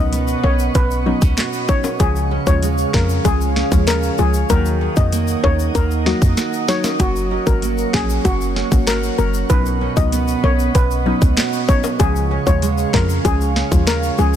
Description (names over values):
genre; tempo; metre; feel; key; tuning
dancehall; 96 BPM; 4/4; straight; unclear; A4 = 440 Hz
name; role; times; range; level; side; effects
steel pan; melody; 0.0-14.3 s; Gb4 to Eb5; -23 LUFS; left 3 dB; digital delay
soft round pluck; accompaniment; 0.0-14.4 s; F3 to Gb4; -24 LUFS; left 4 dB; chorus
glassy FM pad; sustained chords; 0.0-14.4 s; Ab4 to Eb6; -26 LUFS; equal; ensemble chorus, built-in reverb, sidechain pumping
nylon-string guitar; arpeggios; 0.0-14.4 s; B2 to Gb4; -24 LUFS; right 9 dB; digital delay
short 808-style bass; bass; 0.0-14.4 s; Gb1 to F2; -19 LUFS; equal; none
island pop drum kit; drums; 0.1-14.0 s; handclaps, hi-hat, kick drum, snare drum; -18 LUFS; equal; vintage 12-bit sampler grit
tube shaker and timbales; percussion; 0.1-14.4 s; none; -29 LUFS; left 7 dB; none
room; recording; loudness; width
small room ambience; dense, heavily limited modern master; -14 LUFS; side -10 dB against mid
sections
0.0-14.4 A section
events
drum fill 6.4-7.0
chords
0.0 Badd9; 2.0 Db; 4.5 Ebm; 7.0 Gb; 9.5 Badd9; 12.0 Db